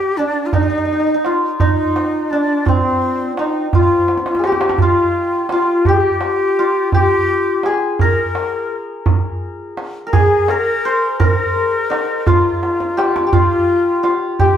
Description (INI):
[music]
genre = Persian modal ensemble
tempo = 56 BPM (dotted quarters)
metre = 6/8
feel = straight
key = C avaz esfahan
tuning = A4 = 437 Hz
[part]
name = santur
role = melody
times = 0.0-14.6 s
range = C4 to C5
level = -18 LUFS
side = left 1 dB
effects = none
[part]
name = breathy bright ney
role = second line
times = 0.0-14.6 s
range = C4 to Bb4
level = -18 LUFS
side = left 1 dB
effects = none
[part]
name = tombak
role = percussion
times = 0.2-14.6 s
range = none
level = -18 LUFS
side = right 3 dB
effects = none
[sound]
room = wet studio reverb, RT60 0.8 s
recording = band playing live in one room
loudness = -14 LUFS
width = side -9 dB against mid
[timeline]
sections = 0.0-4.8 A section; 4.8-14.6 B section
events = drum fill 4.1-4.8, 12.6-13.3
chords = none